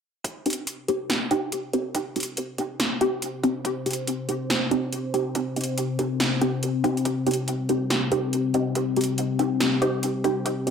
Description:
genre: deep dubstep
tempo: 141 BPM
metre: 4/4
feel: swing 61% on 16ths, half-time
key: C minor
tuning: A4 = 440 Hz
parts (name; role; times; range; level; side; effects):
- dark analog pad; sustained chords; 1.2-10.7 s; C4 to C5; -28 LUFS; left 3 dB; chorus
- deep house drum kit; drums; 0.2-10.7 s; hi-hat, snare drum; -27 LUFS; right 1 dB; overdrive
- electronic kick drum; drums; 0.2-10.6 s; none; -37 LUFS; right 1 dB; overdrive, high-pass filter on kick, high-pass filter on room
- filtered dub chord stab; stabs; 0.5-10.7 s; C4 to G4; -26 LUFS; right 1 dB; phaser, wide subtle chorus, dub echo
room: wet plate reverb, RT60 1.0 s, digital ambience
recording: dreamy mix soaked in reverb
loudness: -23 LUFS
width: side -7 dB against mid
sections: 0.2-10.7 A section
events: filter sweep on analog synth pad 0.2-10.7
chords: 0.2 Cm

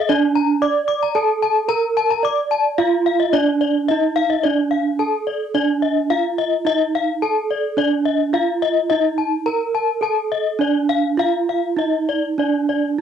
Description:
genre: gamelan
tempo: 97-113 BPM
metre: 4/4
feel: straight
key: D pelog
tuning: A4 = 440 Hz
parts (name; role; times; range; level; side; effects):
- gamelan-type bronze metallophone; melody; 0.0-13.0 s; D4 to D5; -19 LUFS; right 5 dB; none
- gamelan-type bronze metallophone; arpeggios; 0.0-12.8 s; D5 to D6; -20 LUFS; left 9 dB; cassette tape
room: moderate studio ambience, RT60 0.5 s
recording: home recording on cassette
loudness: -16 LUFS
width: side -8 dB against mid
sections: 0.0-4.4 A section; 4.4-13.0 B section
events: none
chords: none

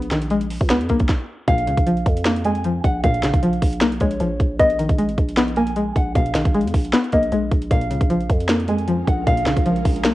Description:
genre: hip hop, trap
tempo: 154 BPM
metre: 4/4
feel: half-time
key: Bb phrygian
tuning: A4 = 440 Hz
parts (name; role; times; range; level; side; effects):
- string-like resonator pluck; accompaniment; 0.0-10.1 s; Bb2 to Cb4; -22 LUFS; left 1 dB; chorus
- growling 808-style bass; bass; 0.0-10.1 s; Ab1 to F2; -25 LUFS; equal; none
- trap drum kit; drums; 0.0-10.1 s; hi-hat, kick drum, snare drum; -20 LUFS; equal; none
- nylon-string guitar; melody; 1.5-10.1 s; Db5 to Ab5; -24 LUFS; equal; analog delay
- ethereal airy pad; sustained chords; 8.7-10.1 s; Ab3 to Bb4; -32 LUFS; left 1 dB; ensemble chorus, built-in reverb, phaser
room: light reverb, digital ambience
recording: worn, warbling old tape, cassette tape, warbly pitch drift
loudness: -17 LUFS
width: side -16 dB against mid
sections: 0.0-1.5 A section; 1.5-10.1 B section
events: stop 1.1-1.5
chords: 0.0 Abmadd9/Bb; 1.5 Bbm7; 4.6 Abmadd9; 7.7 Bbm7

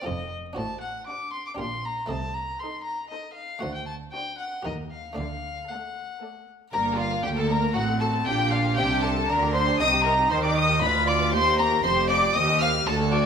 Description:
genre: classical, baroque-style concerto movement with solo episodes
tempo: 118 BPM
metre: 3/4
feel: straight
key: G minor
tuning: A4 = 438 Hz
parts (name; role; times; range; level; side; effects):
- warm violin; melody; 0.0-13.3 s; D5 to F6; -27 LUFS; left 2 dB; none
- buff-stop harpsichord; accompaniment; 0.0-13.3 s; D2 to Eb5; -35 LUFS; equal; none
- dark chamber violin section; melody; 0.1-13.3 s; A4 to F6; -28 LUFS; left 4 dB; none
- warm chamber violin section; second line; 0.1-13.3 s; D4 to F5; -30 LUFS; equal; none
- dark chamber viola section; accompaniment; 0.1-13.3 s; A3 to G4; -31 LUFS; right 1 dB; none
- rich chamber double bass section; bass; 0.1-13.3 s; F1 to Eb2; -31 LUFS; right 4 dB; none
- warm chamber cello section; bass; 0.1-13.3 s; D2 to Eb3; -30 LUFS; right 1 dB; none
room: moderate recital hall reverb, RT60 1.4 s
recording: minimal, uncompressed stereo recording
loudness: -22 LUFS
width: side -7 dB against mid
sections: 0.0-6.7 A section; 6.7-13.3 B section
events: none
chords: 0.1 F; 0.6 D7/A; 1.6 Gm/Bb; 2.1 Adim/C; 3.6 D7; 4.7 Eb; 5.2 D; 6.7 Gm; 7.8 F#dim/A; 8.3 Gm/Bb; 9.8 Cm; 10.8 Bdim/D; 11.3 Cm

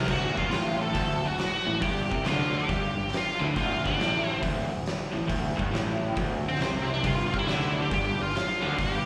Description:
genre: blues rock power trio and southern rock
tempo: 138 BPM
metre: 4/4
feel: swing 68% on 8ths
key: unclear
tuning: A4 = 441 Hz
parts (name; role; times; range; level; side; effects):
- octave-fuzz lead guitar; melody; 0.0-9.1 s; C4 to A4; -31 LUFS; equal; wah, distortion
- crunchy overdriven guitar; riff; 0.0-9.1 s; D2 to D3; -33 LUFS; equal; slapback echo
- fuzz fingered electric bass; bass; 0.0-9.1 s; D1 to D2; -35 LUFS; equal; overdrive
- oversized low-tuned drum kit; drums; 0.0-8.9 s; crash cymbal, hi-hat, kick drum, snare drum; -34 LUFS; equal; none
room: light reverb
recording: live gig heard through the venue's PA, recital hall reverb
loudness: -27 LUFS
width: mono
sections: 0.1-9.1 A section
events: none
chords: 0.1 D; 1.8 G5; 3.6 D5; 7.0 G5

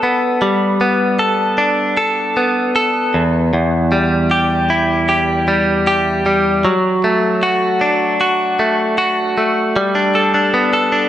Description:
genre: pop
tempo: 77 BPM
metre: 4/4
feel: straight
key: G major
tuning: A4 = 440 Hz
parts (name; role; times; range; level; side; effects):
- direct-recorded clean electric guitar; solo; 0.0-11.1 s; E2 to A4; -13 LUFS; equal; none
room: moderate lush hall reverb, RT60 2.7 s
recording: none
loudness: -13 LUFS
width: side -11 dB against mid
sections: 0.0-9.8 A section; 9.8-11.1 B section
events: none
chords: 0.0 Gadd9; 3.1 Em; 6.6 D/F#; 9.8 Gadd9

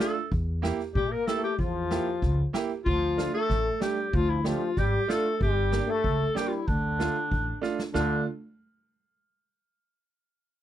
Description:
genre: klezmer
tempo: 94 BPM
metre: 2/4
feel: straight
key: D harmonic minor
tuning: A4 = 441 Hz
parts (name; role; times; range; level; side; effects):
- mellow clarinet; melody; 0.0-8.2 s; D4 to Bb4; -29 LUFS; equal; none
- trombone with plunger mute; second line; 0.0-8.2 s; D3 to Bb3; -34 LUFS; left 11 dB; none
- bright upright piano; accompaniment; 0.0-8.2 s; A3 to G4; -31 LUFS; right 7 dB; none
- street-band drum kit; drums; 0.0-8.1 s; kick drum, snare drum; -32 LUFS; equal; none
- upright bass; bass; 0.3-8.2 s; G1 to Bb2; -29 LUFS; equal; none
room: little or no reverb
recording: dry, close 1970s-style studio recording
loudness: -25 LUFS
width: side -12 dB against mid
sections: 0.0-7.9 A section; 7.9-9.2 B section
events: drum fill 7.6-7.9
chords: 0.3 Edim; 2.9 Dm; 5.4 Gm; 6.7 Dm

